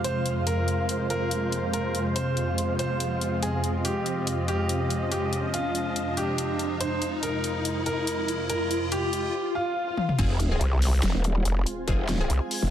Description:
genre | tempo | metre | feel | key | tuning
heavy wobble dubstep | 142 BPM | 4/4 | swing 54% on 16ths, half-time | F minor | A4 = 440 Hz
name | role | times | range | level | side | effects
clear baby grand piano | melody | 0.0-10.1 s | F4 to C5 | -30 LUFS | equal | digital delay
supersaw chords | sustained chords | 0.0-12.7 s | F2 to Eb5 | -29 LUFS | equal | sidechain pumping, low-pass filter
dubstep drum kit | drums | 0.0-12.6 s | crash cymbal, hi-hat, snare drum, toms | -31 LUFS | left 2 dB | none
riser, swell and sub drop | sound effects | 1.4-11.9 s | none | -32 LUFS | equal | none
granular cloud pad | texture | 0.0-12.7 s | F4 to Ab5 | -36 LUFS | equal | built-in reverb, sidechain pumping
orchestra-hit-like synth stab | stabs | 10.2-12.4 s | C4 to Ab4 | -35 LUFS | left 4 dB | built-in reverb, digital delay
growl bass | bass | 10.2-12.7 s | Eb1 to F1 | -25 LUFS | equal | chorus, overdrive
electronic kick drum | drums | 10.2-12.0 s | none | -29 LUFS | equal | distortion
vowel-sweep wobble bass | bass | 10.6-12.4 s | F1 to C2 | -22 LUFS | equal | chorus, overdrive
room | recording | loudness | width
light reverb | dense, heavily limited modern master | -24 LUFS | side -10 dB against mid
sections
0.0-10.2 A section; 10.2-12.7 B section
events
build-up 0.0-10.2; filter sweep on supersaw synth 0.0-10.2; riser 1.4-9.3; swell 9.3-10.2; drum fill 10.0; drop 10.2-12.7; impact 10.2-11.9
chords
0.0 Fm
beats
| 0.04 0.47 0.89 1.31 | 1.74 2.16 2.58 3.00 | 3.42 3.85 4.27 4.69 | 5.12 5.54 5.96 6.38 | 6.81 7.23 7.65 8.07 | 8.50 8.92 9.34 9.76 | 10.19 10.61 11.03 11.45 | 11.88 12.30

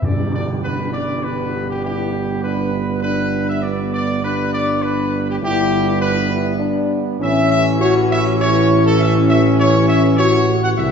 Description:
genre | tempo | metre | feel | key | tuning
classical, ceremonial fanfare | 101 BPM | 3/4 | straight | G major | A4 = 440 Hz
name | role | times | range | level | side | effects
dark trumpet section | melody | 0.0-10.9 s | G4 to F#5 | -21 LUFS | equal | none
warm trombone section | sustained chords | 0.0-10.9 s | E3 to C#4 | -23 LUFS | right 3 dB | none
mellow tuba | bass | 0.0-10.9 s | G1 to C2 | -19 LUFS | right 2 dB | none
tam-tam and cymbal swell | percussion | 0.0-2.4, 10.8-10.9 s | none | -30 LUFS | right 1 dB | none
timpani | percussion | 0.0-0.9 s | G2 | -23 LUFS | left 1 dB | none
dark French horn section | sustained chords | 0.6-10.9 s | B3 to G4 | -20 LUFS | left 4 dB | none
room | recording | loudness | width
wet concert hall reverb, RT60 1.8 s | heard from further back in the room, nothing above 7.6 kHz | -15 LUFS | side -6 dB against mid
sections
0.0-10.9 A section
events
band accent 0.0-0.6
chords
0.0 G; 7.2 A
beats
| 0.03 0.63 1.23 | 1.83 2.43 3.02 | 3.63 4.23 4.83 | 5.42 6.02 6.61 | 7.21 7.80 8.39 | 8.99 9.58 10.18 | 10.78

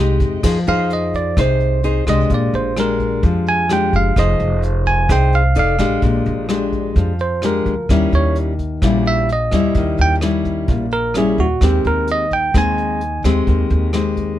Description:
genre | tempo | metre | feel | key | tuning
bossa nova | 129 BPM | 4/4 | straight | F dorian | A4 = 440 Hz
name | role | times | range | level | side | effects
nylon-string guitar | accompaniment | 0.0-14.4 s | Bb2 to D5 | -19 LUFS | left 3 dB | none
upright bass | bass | 0.0-14.4 s | F1 to F2 | -19 LUFS | equal | none
vintage brush drum kit | drums | 0.2-14.3 s | crash cymbal, hi-hat, kick drum, rim click | -23 LUFS | equal | none
bell-like tine electric piano | melody | 0.7-13.2 s | Gb4 to Ab5 | -19 LUFS | right 3 dB | none
room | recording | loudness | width
little or no reverb | close, detailed microphones | -14 LUFS | side -12 dB against mid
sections
0.4-14.4 A section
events
tine electric piano solo 0.4-14.4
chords
0.4 Fm7; 2.3 Bb6; 4.2 Fm7; 5.6 F13; 6.0 Bb6; 7.9 Eb7b9; 11.6 Abmaj7/Eb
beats
| 0.44 0.91 1.37 1.84 | 2.30 2.77 3.23 3.70 | 4.17 4.63 5.10 5.57 | 6.03 6.50 6.96 7.43 | 7.89 8.36 8.82 9.29 | 9.76 10.22 10.69 11.15 | 11.62 12.08 12.54 13.01 | 13.47 13.94

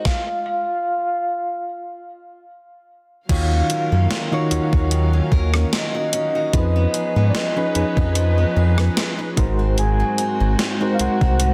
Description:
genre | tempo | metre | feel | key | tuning
contemporary R&B | 74 BPM | 4/4 | swing 54% on 16ths | Eb minor | A4 = 440 Hz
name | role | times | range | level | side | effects
soft octave-layered synth lead | melody | 0.0-11.5 s | D5 to Ab5 | -27 LUFS | equal | chorus, tremolo, delay
soft electric-piano-like synth keys | accompaniment | 0.0-11.5 s | Eb3 to Db5 | -27 LUFS | equal | chorus, tremolo
picked steel-string acoustic guitar | arpeggios | 0.0-11.5 s | Ab2 to C5 | -32 LUFS | equal | none
worn celesta | texture | 0.0-3.7 s | F5 | -43 LUFS | equal | none
gated 80s digital drum machine | drums | 0.1-11.5 s | crash cymbal, hi-hat, kick drum, rim click, snare drum | -24 LUFS | equal | gated reverb, gated reverb snare, overdrive
warm studio string section | sustained chords | 3.3-11.5 s | Eb3 to F5 | -32 LUFS | equal | none
round analog bass | bass | 3.3-11.5 s | Ab1 to Ab2 | -20 LUFS | equal | none
room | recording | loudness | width
digital ambience | dense, heavily limited modern master | -20 LUFS | mono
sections
0.0-3.3 A section; 3.3-11.5 A section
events
stop 0.1-3.3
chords
0.1 N.C.; 3.3 Ebm7; 6.5 Db7/F; 9.4 Ab7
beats
| 0.05 0.86 1.67 2.48 | 3.29 4.11 4.92 5.73 | 6.54 7.35 8.16 8.97 | 9.78 10.59 11.40

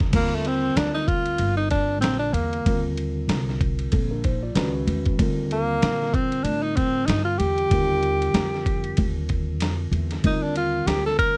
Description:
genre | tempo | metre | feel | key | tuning
hip hop, jazz-hop | 95 BPM | 4/4 | swing 58% on 16ths | C minor | A4 = 438 Hz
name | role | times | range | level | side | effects
mellow tine electric piano | accompaniment | 0.0-11.4 s | D3 to D5 | -31 LUFS | equal | none
upright bass | bass | 0.0-11.4 s | G1 to Bb2 | -29 LUFS | equal | none
dusty soul sampler-style drum kit | drums | 0.0-11.4 s | crash cymbal, hi-hat, kick drum, ride cymbal, snare drum | -28 LUFS | equal | overdrive
breathy tenor saxophone | melody | 0.2-11.4 s | A3 to Bb4 | -26 LUFS | equal | none
room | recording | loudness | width
light reverb | dark, warm production | -23 LUFS | mono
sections
0.1-11.4 A section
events
none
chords
0.0 Cm7; 4.6 Dbm7; 5.2 Cm7/Eb; 10.2 Ebmaj7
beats
| 0.13 0.77 1.40 2.03 | 2.66 3.29 3.92 4.55 | 5.19 5.82 6.45 7.08 | 7.71 8.34 8.98 9.61 | 10.24 10.87

